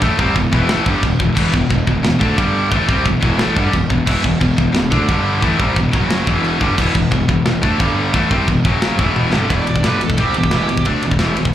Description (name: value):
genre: heavy metal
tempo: 177 BPM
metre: 4/4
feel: straight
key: E minor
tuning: A4 = 440 Hz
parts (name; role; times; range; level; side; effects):
- heavy high-gain guitar; riff; 0.0-11.5 s; E2 to D4; -18 LUFS; left 5 dB; distortion, slapback echo
- heavy high-gain guitar; riff; 0.0-11.5 s; E2 to D4; -21 LUFS; right 8 dB; distortion, slapback echo
- fuzz fingered electric bass; bass; 0.0-11.5 s; E1 to D2; -20 LUFS; equal; overdrive
- tight metal drum kit; drums; 0.0-11.5 s; china cymbal, crash cymbal, kick drum, ride cymbal, snare drum, toms; -19 LUFS; equal; none
- high-gain lead guitar; melody; 9.5-10.9 s; G4 to D5; -23 LUFS; right 5 dB; distortion, digital delay
room: little or no reverb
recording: live gig heard through the venue's PA, club reverb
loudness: -13 LUFS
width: side -11 dB against mid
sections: 0.0-9.5 A section; 9.5-11.5 B section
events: half time 0.0-9.5; drum fill 9.2-9.5; lead electric guitar solo 9.5-11.5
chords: 0.0 Em; 2.4 G5; 2.7 Em; 5.1 G5; 5.4 Em; 5.9 F#5; 6.3 Em; 7.8 G5; 8.1 Em; 8.7 F#5; 9.0 Em